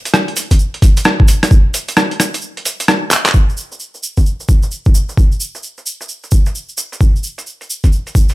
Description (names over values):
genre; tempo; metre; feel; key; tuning
UK garage; 131 BPM; 4/4; swing 64% on 16ths; none; none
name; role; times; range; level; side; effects
boom bap sampler-style drum kit; drums; 0.1-8.3 s; handclaps, hi-hat, rim click; -14 LUFS; equal; overdrive, low-pass filter on hats, studio ambience, low-pass filter on snare
tube shaker; percussion; 0.1-8.3 s; none; -24 LUFS; right 1 dB; none
electronic kick drum; drums; 0.5-8.3 s; none; -10 LUFS; equal; overdrive, studio ambience
room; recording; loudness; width
digital ambience; none; -11 LUFS; side -19 dB against mid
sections
0.0-3.3 A section; 3.3-8.3 B section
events
kick drops out 2.4-3.3; drum fill 3.1; filter sweep on drum 3.3-8.3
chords
none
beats
0.14 0.59 1.05 | 1.51 1.97 2.43 2.88 | 3.34 3.80 4.26 4.72 | 5.17 5.63 6.09 6.55 | 7.01 7.46 7.92